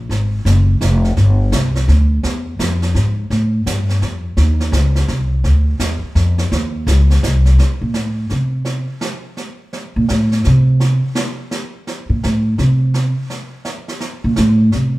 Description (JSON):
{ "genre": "jazz, small-group swing and bop", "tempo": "168 BPM", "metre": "3/4", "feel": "swing 64% on 8ths", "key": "unclear", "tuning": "A4 = 440 Hz", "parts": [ { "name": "upright bass", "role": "bass", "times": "0.0-15.0 s", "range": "F1 to C3", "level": "-13 LUFS", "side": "equal", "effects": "none" }, { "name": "jazz brush drum kit", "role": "drums", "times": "0.1-15.0 s", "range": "brushed snare drum, hi-hat, snare drum", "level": "-24 LUFS", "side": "right 2 dB", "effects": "none" } ], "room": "light reverb", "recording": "band playing live in one room", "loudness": "-13 LUFS", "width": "side -18 dB against mid", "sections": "0.0-7.6 A section; 7.6-15.0 B section", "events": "upright bass solo 7.6-15.0", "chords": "none" }